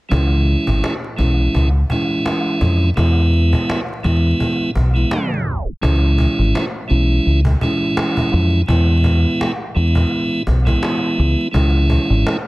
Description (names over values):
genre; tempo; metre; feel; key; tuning
hip hop, boom-bap hip-hop; 84 BPM; 4/4; swing 55% on 16ths; C# minor; A4 = 444 Hz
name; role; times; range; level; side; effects
tonewheel organ; accompaniment; 0.1-12.4 s; E3 to E4; -19 LUFS; right 1 dB; overdrive, stopped rotary speaker, high-pass filter, low-pass filter
deep dub fingered electric bass; bass; 0.1-12.2 s; G#1 to E#2; -15 LUFS; equal; none
cajon; drums; 0.1-12.4 s; none; -23 LUFS; equal; none
room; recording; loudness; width
small room ambience; vinyl crackle, tape stop; -14 LUFS; side -20 dB against mid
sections
0.1-5.8 A section; 5.8-12.5 B section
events
tape stop 5.1-5.8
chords
0.1 C#m; 3.0 E; 5.8 C#m; 8.7 E; 11.5 C#m